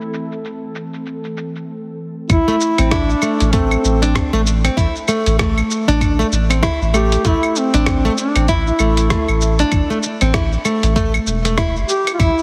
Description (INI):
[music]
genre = organic downtempo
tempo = 97 BPM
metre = 4/4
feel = swing 59% on 16ths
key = A minor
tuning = A4 = 440 Hz
[part]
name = ethereal airy pad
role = sustained chords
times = 0.0-1.6 s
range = E3 to A4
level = -30 LUFS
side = equal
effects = ensemble chorus, built-in reverb, sidechain pumping
[part]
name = dusty soul sampler-style drum kit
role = drums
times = 0.0-12.4 s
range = claves, hi-hat, rim click, shaker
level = -25 LUFS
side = equal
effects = low-pass filter on perc, low-pass filter on hats, low-pass filter on snare
[part]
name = mellow duduk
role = melody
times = 2.3-12.4 s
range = C4 to G4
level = -22 LUFS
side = equal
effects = digital delay
[part]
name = warm sub bass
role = bass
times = 2.3-12.3 s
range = E1 to A1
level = -19 LUFS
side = equal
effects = sidechain pumping
[part]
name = electronic kick drum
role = drums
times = 2.3-12.3 s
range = none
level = -22 LUFS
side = equal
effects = none
[part]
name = nylon-string guitar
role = arpeggios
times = 2.5-12.4 s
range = A3 to E4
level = -22 LUFS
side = equal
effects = digital delay
[sound]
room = light reverb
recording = heavily compressed radio sound, multiband compression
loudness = -16 LUFS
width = mono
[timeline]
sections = 0.0-2.3 A section; 2.3-12.4 B section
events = none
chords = 0.0 Am; 2.3 A5